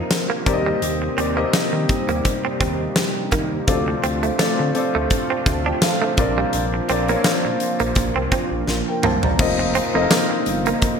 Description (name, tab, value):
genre	1980s-style pop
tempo	84 BPM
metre	4/4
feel	swing 55% on 16ths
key	C dorian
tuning	A4 = 440 Hz
part	clear concert grand piano	accompaniment	0.0-11.0 s	C4 to Bb5	-23 LUFS	left 3 dB	lush chorus
part	chorused pulse-width pad	sustained chords	0.0-11.0 s	C3 to Bb4	-26 LUFS	right 2 dB	none
part	direct-recorded clean electric guitar	riff	0.0-10.8 s	G3 to D4	-26 LUFS	right 5 dB	lush chorus, ping-pong delay
part	huge arena drum kit	drums	0.1-11.0 s	crash cymbal, hi-hat, kick drum, snare drum, tambourine, toms	-22 LUFS	equal	gated reverb
part	smooth synth bass	bass	0.5-10.7 s	F1 to Eb3	-26 LUFS	equal	none
room	moderate plate reverb, RT60 1.6 s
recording	bright 1980s-style digital production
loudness	-17 LUFS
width	side -6 dB against mid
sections	0.0-9.4 A section; 9.4-11.0 B section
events	drum fill 8.7-9.4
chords	0.5 Cm7; 3.7 Dm7; 6.2 Bbadd9; 9.4 F7sus4